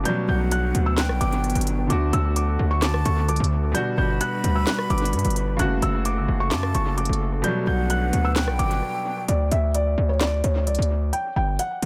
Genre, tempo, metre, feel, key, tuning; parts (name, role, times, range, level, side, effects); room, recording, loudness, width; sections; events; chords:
hip hop, trap; 130 BPM; 4/4; half-time; A4 = 439 Hz
felt-muted upright piano; melody; 0.0-11.9 s; C#5 to G6; -30 LUFS; equal; analog delay
bright grand piano; accompaniment; 0.0-9.3 s; B2 to F#4; -30 LUFS; equal; analog delay
warbly tape-like pad; sustained chords; 0.0-9.3 s; D3 to B4; -33 LUFS; equal; chorus, built-in reverb
distorted 808-style bass; bass; 0.0-11.9 s; F#1 to G2; -25 LUFS; equal; distortion
trap drum kit; drums; 0.1-11.9 s; handclaps, hi-hat, rim click, snare drum; -31 LUFS; equal; analog delay
breathy jazz flute; second line; 0.3-9.2 s; F#5 to B5; -35 LUFS; equal; analog delay
little or no reverb; echo-heavy mix; -23 LUFS; mono
0.0-9.3 A section; 9.3-11.9 B section
break 8.8-9.3
0.1 Gmaj7; 1.9 D; 3.7 Gmaj7; 5.6 F#m; 7.4 Gmaj7; 9.3 N.C.; 11.1 G5